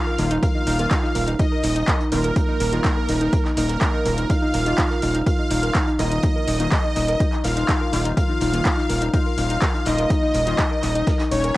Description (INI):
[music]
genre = melodic techno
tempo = 124 BPM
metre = 4/4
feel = straight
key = unclear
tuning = A4 = 440 Hz
[part]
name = expressive portamento lead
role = melody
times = 0.0-11.6 s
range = Bb3 to F4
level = -29 LUFS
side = equal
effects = analog chorus, cassette tape, tape echo
[part]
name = big bright polysynth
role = second line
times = 0.0-11.6 s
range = Bb4 to F5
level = -26 LUFS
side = right 1 dB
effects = chorus, sidechain pumping, cassette tape, analog delay
[part]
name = soft round pluck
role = arpeggios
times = 0.1-11.5 s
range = Eb4 to Bb4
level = -25 LUFS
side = left 1 dB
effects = chorus, cassette tape, sidechain pumping, analog delay
[part]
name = synth brass stab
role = stabs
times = 0.2-10.6 s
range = Eb3 to F4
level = -30 LUFS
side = left 2 dB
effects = chorus, sidechain pumping, cassette tape, analog delay
[part]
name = gritty driven synth bass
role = bass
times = 0.2-11.5 s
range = Eb1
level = -24 LUFS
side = equal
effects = sidechain pumping
[part]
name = deep house drum kit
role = drums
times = 0.2-11.5 s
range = handclaps, hi-hat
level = -27 LUFS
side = equal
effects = overdrive, sidechain pumping on hats, cassette tape, sidechain pumping on cymbals
[part]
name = warm soul drum kit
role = drums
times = 0.2-11.6 s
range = hi-hat, snare drum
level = -40 LUFS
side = right 1 dB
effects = none
[part]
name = electronic kick drum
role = drums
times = 0.4-11.2 s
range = none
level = -22 LUFS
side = equal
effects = overdrive, cassette tape
[sound]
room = moderate studio reverb, RT60 0.6 s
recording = home recording on cassette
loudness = -18 LUFS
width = side -18 dB against mid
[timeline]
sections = 0.0-11.6 A section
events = none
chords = 0.0 Ebsus2